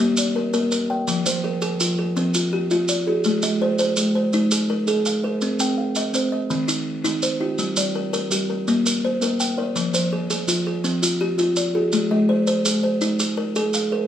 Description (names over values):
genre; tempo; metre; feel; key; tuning
southern african traditional, mbira-style interlocking cycle; 111 BPM (dotted quarters); 12/8; straight; F equiheptatonic; A4 = 440 Hz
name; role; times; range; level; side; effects
buzzing kalimba; arpeggios; 0.0-14.1 s; Eb3+29c to G5-29c; -23 LUFS; left 2 dB; none
kalimba; arpeggios; 0.0-14.1 s; Eb3+29c to G5-29c; -23 LUFS; right 2 dB; none
maracas; percussion; 0.2-13.9 s; none; -25 LUFS; right 3 dB; none
room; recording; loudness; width
moderate large studio reverb, RT60 0.8 s; band playing live in one room; -19 LUFS; side -10 dB against mid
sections
0.0-1.1 A section; 1.1-14.1 B section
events
none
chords
0.0 Bb; 1.1 Fm; 3.2 Ab; 5.4 Cm; 6.5 Eb; 7.6 Gm; 8.7 Bb; 9.8 Fm; 11.9 Ab